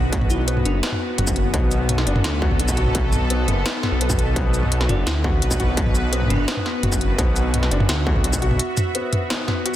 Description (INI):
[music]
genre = half-time drum and bass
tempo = 170 BPM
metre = 4/4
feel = half-time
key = B minor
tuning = A4 = 440 Hz
[part]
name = bowed-like drone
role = sustained chords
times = 0.0-9.8 s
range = B3 to E5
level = -27 LUFS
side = left 1 dB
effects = built-in reverb, sidechain pumping
[part]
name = felt-muted upright piano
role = arpeggios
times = 0.0-9.8 s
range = B3 to B4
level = -28 LUFS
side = left 2 dB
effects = digital delay
[part]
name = dark detuned saw bass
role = bass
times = 0.0-8.6 s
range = F#1 to D2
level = -21 LUFS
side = equal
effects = none
[part]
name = electronic kick drum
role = drums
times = 0.1-8.4 s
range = none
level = -22 LUFS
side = equal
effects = distortion
[part]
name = industrial drum kit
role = drums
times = 0.1-9.7 s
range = hi-hat, shaker, snare drum, toms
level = -24 LUFS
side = equal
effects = none
[part]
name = bell-like FM electric piano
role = melody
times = 0.3-0.8, 4.9-6.6 s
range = D4 to F#4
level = -32 LUFS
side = left 2 dB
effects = none
[sound]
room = light reverb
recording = dense, heavily limited modern master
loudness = -18 LUFS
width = side -13 dB against mid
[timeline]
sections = 0.0-9.8 A section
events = break 8.6-9.8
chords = 0.0 Bm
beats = | 0.13 0.48 0.83 1.18 | 1.54 1.89 2.24 2.60 | 2.95 3.30 3.65 4.01 | 4.36 4.71 5.07 5.42 | 5.77 6.13 6.48 6.83 | 7.18 7.54 7.89 8.24 | 8.60 8.95 9.30 9.65